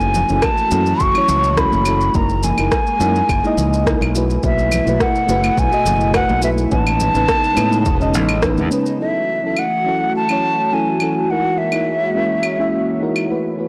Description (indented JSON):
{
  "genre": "sunset chillout",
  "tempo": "105 BPM",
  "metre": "4/4",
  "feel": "straight",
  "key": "F# dorian",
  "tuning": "A4 = 440 Hz",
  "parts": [
    { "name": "mellow hollow jazz flute", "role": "melody", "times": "0.0-13.3 s", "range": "E5 to C#6", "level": "-21 LUFS", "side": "equal", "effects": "tape echo" },
    { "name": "mellow FM electric piano", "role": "accompaniment", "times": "0.0-13.7 s", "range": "F#3 to E5", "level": "-24 LUFS", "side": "equal", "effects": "chorus, delay" },
    { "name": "airy breathy pad", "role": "sustained chords", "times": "0.0-13.7 s", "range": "B2 to C#5", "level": "-26 LUFS", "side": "equal", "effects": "chorus" },
    { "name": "modern bright fingered electric bass", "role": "bass", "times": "0.0-8.7 s", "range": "E1 to A2", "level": "-22 LUFS", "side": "equal", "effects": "none" },
    { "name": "electronic shaker, rim click and claves", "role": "drums", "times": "0.0-13.3 s", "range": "none", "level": "-26 LUFS", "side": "equal", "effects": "overdrive" },
    { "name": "congas", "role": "percussion", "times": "0.2-8.7 s", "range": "none", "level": "-30 LUFS", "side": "equal", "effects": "none" },
    { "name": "electronic kick drum", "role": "drums", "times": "0.4-8.6 s", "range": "none", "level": "-24 LUFS", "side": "equal", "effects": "overdrive" }
  ],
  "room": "moderate lush hall reverb, RT60 2.7 s",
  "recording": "blown-out, overdriven recording, overdrive",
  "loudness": "-17 LUFS",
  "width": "mono",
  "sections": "0.0-9.0 A section; 9.0-13.7 B section",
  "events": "none",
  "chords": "0.0 F#m7; 2.1 F#13; 4.1 B7sus4; 6.7 Amaj9#11; 9.0 F#m7; 11.3 F#13"
}